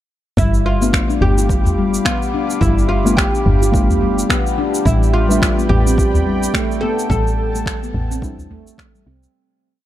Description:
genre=organic downtempo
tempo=107 BPM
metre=4/4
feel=swing 57% on 16ths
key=unclear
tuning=A4 = 440 Hz
part: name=oud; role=melody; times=0.4-8.7 s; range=E4 to A4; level=-23 LUFS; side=right 1 dB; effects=digital delay
part: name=warm analog pad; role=sustained chords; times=0.4-9.3 s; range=G4 to D6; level=-26 LUFS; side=right 3 dB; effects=chorus, sidechain pumping
part: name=handpan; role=arpeggios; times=0.4-9.2 s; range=G3 to F4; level=-22 LUFS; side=left 3 dB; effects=vintage 12-bit sampler grit, digital delay
part: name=woody FM bass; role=bass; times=0.4-9.3 s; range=G1 to C2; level=-17 LUFS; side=equal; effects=sidechain pumping
part: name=electronic cabasa and finger snaps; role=drums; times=0.4-9.3 s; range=none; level=-24 LUFS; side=equal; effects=none
part: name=electronic kick drum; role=drums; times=0.4-8.9 s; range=none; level=-20 LUFS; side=equal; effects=overdrive
part: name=muted felt-like synth keys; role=accompaniment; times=0.8-8.5 s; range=G3 to E5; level=-23 LUFS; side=left 1 dB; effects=chorus, vintage 12-bit sampler grit, sidechain pumping, digital delay
part: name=udu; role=percussion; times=1.2-8.6 s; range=none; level=-21 LUFS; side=left 1 dB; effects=none
room=light reverb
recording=dark, warm production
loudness=-14 LUFS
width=side -13 dB against mid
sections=0.4-9.3 groove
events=fade-out 6.4-9.3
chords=0.4 G7; 4.9 Am11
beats=| 0.38 0.94 1.50 2.06 | 2.62 3.18 3.74 4.30 | 4.86 5.42 5.98 6.54 | 7.11 7.67 8.23 8.79

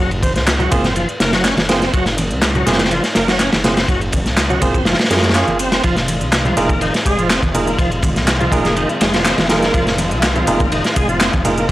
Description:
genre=breakbeat, breaks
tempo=123 BPM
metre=4/4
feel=straight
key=F phrygian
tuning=A4 = 435 Hz
part: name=bright tonewheel organ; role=riff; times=0.0-11.7 s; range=Eb3 to Db4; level=-20 LUFS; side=equal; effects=chorus vibrato, slow rotary speaker, tape echo
part: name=dark detuned saw bass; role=bass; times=0.0-11.7 s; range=F1 to Gb2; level=-22 LUFS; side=equal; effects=none
part: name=crunchy breakbeat drum kit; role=drums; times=0.1-11.7 s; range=kick drum, ride cymbal, snare drum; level=-17 LUFS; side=equal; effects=none
part: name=garage drum kit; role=drums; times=0.1-11.7 s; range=handclaps, hi-hat, ride cymbal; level=-24 LUFS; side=equal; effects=none
part: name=warm alto saxophone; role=melody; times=0.2-0.4, 7.1-10.0 s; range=Ab4 to C5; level=-24 LUFS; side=equal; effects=old record sound, tape echo
part: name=congas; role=percussion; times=0.2-11.6 s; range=none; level=-25 LUFS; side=right 1 dB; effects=none
part: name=overdriven tine electric piano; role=stabs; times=0.7-11.6 s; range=Bb3 to Ab4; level=-22 LUFS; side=right 2 dB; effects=tape echo
part: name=dark studio string section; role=sustained chords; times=5.8-11.7 s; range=Eb3 to F4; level=-23 LUFS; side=left 1 dB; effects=sidechain pumping
room=light reverb, small room reverb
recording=dry, gritty hardware recording, vinyl crackle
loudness=-13 LUFS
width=side -15 dB against mid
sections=0.0-11.7 A section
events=kick drops out 4.9-5.8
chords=0.0 Gbmaj9; 5.8 Fm7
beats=0.47 0.96 1.45 | 1.93 2.42 2.91 3.40 | 3.89 4.37 4.86 5.35 | 5.84 6.33 6.81 7.30 | 7.79 8.28 8.76 9.25 | 9.74 10.23 10.71 11.20 | 11.69

